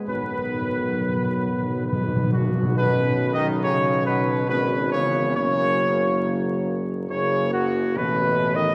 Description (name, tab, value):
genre	classical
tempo	69 BPM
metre	3/4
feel	straight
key	B major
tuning	A4 = 440 Hz
part	mellow French horn section	sustained chords	0.0-8.7 s	D#3 to C#4	-31 LUFS	equal	none
part	mellow trombone section	sustained chords	0.0-8.7 s	F#2 to F#3	-32 LUFS	equal	none
part	mellow trumpet section	melody	0.1-8.7 s	F#4 to D#5	-26 LUFS	equal	none
part	clear tuba	bass	0.1-8.7 s	F#1 to B1	-30 LUFS	equal	none
part	timpani	percussion	0.1-2.7 s	B2	-28 LUFS	equal	none
room	wet church reverb, RT60 2.8 s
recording	vinyl crackle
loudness	-23 LUFS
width	mono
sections	0.0-2.8 A section; 2.8-8.7 B section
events	timpani fill 0.1-2.8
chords	0.1 B; 2.8 Badd9; 5.4 F#; 8.0 Asus2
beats	| 0.07 0.98 1.86 | 2.77 3.63 4.49 | 5.36 6.23 7.10 | 7.97